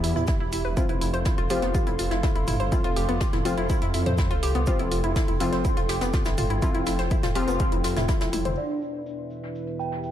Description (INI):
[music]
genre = melodic techno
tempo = 123 BPM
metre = 4/4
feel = straight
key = unclear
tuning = A4 = 440 Hz
[part]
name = dark analog pad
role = sustained chords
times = 0.0-10.1 s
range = E4 to C6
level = -34 LUFS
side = right 1 dB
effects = chorus, vintage 12-bit sampler grit, sidechain pumping
[part]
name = analog pluck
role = arpeggios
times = 0.0-8.5 s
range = B3 to C5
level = -30 LUFS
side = equal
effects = chorus, sidechain pumping, analog delay
[part]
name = synth brass stab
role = stabs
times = 0.0-8.5 s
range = E3 to F4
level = -30 LUFS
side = left 3 dB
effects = chorus, cassette tape, sidechain pumping, analog delay
[part]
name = dark detuned saw bass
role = bass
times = 0.0-8.5 s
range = E1 to F2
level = -28 LUFS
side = equal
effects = tube saturation, sidechain pumping
[part]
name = soft brush drum kit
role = drums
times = 0.0-10.1 s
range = hi-hat, shaker, snare drum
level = -39 LUFS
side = left 1 dB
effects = sidechain pumping on hats, high-pass filter on hats, low-pass filter on hats, high-pass filter on snare, low-pass filter on snare, sidechain pumping on perc, high-pass filter on perc, low-pass filter on perc, high-pass filter on room, low-pass filter on room
[part]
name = techno drum kit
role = drums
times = 0.0-8.6 s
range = hi-hat, toms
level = -34 LUFS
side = right 1 dB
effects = none
[part]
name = electronic kick drum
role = drums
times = 0.3-8.2 s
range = none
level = -26 LUFS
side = equal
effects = none
[part]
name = mellow synth brass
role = melody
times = 8.6-10.1 s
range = D4 to G4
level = -34 LUFS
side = right 1 dB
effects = chorus, sidechain pumping, ping-pong delay
[part]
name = dark detuned synth bell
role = second line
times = 8.6-10.1 s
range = D5 to G5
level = -34 LUFS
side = right 4 dB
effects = chorus, phaser, sidechain pumping, low-pass filter, analog delay
[part]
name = analog drone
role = drone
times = 8.8-10.1 s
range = E2 to B2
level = -37 LUFS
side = left 1 dB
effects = chorus, sidechain pumping
[sound]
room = light reverb, digital ambience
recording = none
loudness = -22 LUFS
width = side -11 dB against mid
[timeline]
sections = 0.0-8.6 A section; 8.6-10.1 B section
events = drum fill 8.3; filter sweep on analog polysynth 8.6-10.1; filter sweep on synth bell 8.6-10.1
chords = 0.0 Em; 0.8 F; 8.6 Em